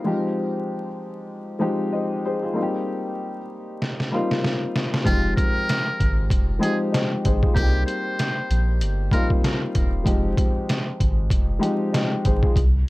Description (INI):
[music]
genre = hip hop, boom-bap hip-hop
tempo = 96 BPM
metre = 4/4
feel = swing 58% on 16ths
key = F minor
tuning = A4 = 437 Hz
[part]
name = dark upright piano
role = accompaniment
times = 0.0-12.6 s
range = F3 to Eb5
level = -25 LUFS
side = left 1 dB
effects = cassette tape, high-pass filter, low-pass filter
[part]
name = trip hop sampler-style drum kit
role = drums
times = 3.8-12.7 s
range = hi-hat, kick drum, snare drum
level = -22 LUFS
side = equal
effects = none
[part]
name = trumpet with metal mute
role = melody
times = 5.1-9.3 s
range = F4 to C5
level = -28 LUFS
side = equal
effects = high-pass filter, low-pass filter, digital delay
[part]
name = soft dub sub bass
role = bass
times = 5.1-12.8 s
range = E1 to C2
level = -22 LUFS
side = equal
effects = none
[sound]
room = little or no reverb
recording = vinyl crackle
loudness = -20 LUFS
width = side -20 dB against mid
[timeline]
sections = 0.0-12.9 A section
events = drum fill 3.8-5.1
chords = 0.1 Fm7; 2.6 Cm7; 5.1 Fm7; 7.6 Cm7; 10.1 Fm7